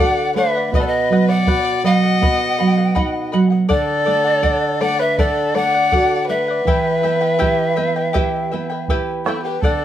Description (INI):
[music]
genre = andean folk, Andean ensemble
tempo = 81 BPM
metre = 4/4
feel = straight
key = E minor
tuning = A4 = 439 Hz
[part]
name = mellow pan flute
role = melody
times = 0.0-9.8 s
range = A4 to F#5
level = -20 LUFS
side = equal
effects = plate reverb
[part]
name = dark violin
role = second line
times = 0.0-9.8 s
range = E4 to D#5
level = -22 LUFS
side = left 2 dB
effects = none
[part]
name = charango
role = accompaniment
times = 0.0-9.8 s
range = E4 to G5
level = -23 LUFS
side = left 4 dB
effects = none
[part]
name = nylon-string guitar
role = accompaniment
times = 0.0-9.8 s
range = B2 to B4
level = -20 LUFS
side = right 4 dB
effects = none
[part]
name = bombo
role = percussion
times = 0.7-9.8 s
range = none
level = -20 LUFS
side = right 1 dB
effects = none
[sound]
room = moderate studio reverb, RT60 0.6 s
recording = none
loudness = -15 LUFS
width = side -11 dB against mid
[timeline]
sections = 0.0-9.6 A section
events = none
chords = 0.0 D; 0.7 B; 3.7 D; 6.7 Em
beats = | 0.73 1.47 2.21 2.95 | 3.69 4.43 5.18 5.92 | 6.66 7.40 8.15 8.89 | 9.63